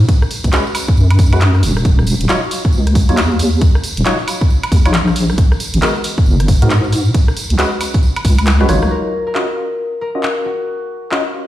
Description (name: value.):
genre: UK garage, two-step garage.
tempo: 136 BPM.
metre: 4/4.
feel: swing 62% on 16ths.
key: Eb minor.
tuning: A4 = 443 Hz.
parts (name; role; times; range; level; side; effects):
deep soft wobble bass; bass; 0.0-8.9 s; Eb1 to Ab2; -12 LUFS; equal; chorus, sidechain pumping.
tambourine; percussion; 0.0-8.9 s; none; -28 LUFS; right 3 dB; none.
electronic kick drum; drums; 0.1-8.4 s; none; -12 LUFS; equal; overdrive.
garage drum kit; drums; 0.1-11.2 s; handclaps, hi-hat, rim click, woodblock; -21 LUFS; equal; none.
percussive organ stab; stabs; 0.5-11.2 s; Gb3 to Eb5; -21 LUFS; equal; analog chorus, ping-pong delay.
concert harp; melody; 8.9-11.5 s; Gb4 to Bb4; -21 LUFS; left 2 dB; tape echo.
room: light reverb.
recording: played on a big sound system in a bare room, stone room reverb.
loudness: -12 LUFS.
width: side -14 dB against mid.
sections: 0.0-8.9 A section; 8.9-11.5 B section.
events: drum fill 8.5-8.9; band accent 8.8.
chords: 0.1 Db7sus4; 1.9 Ebm9; 5.4 Abm9; 7.1 Db7sus4; 8.9 Ebm9.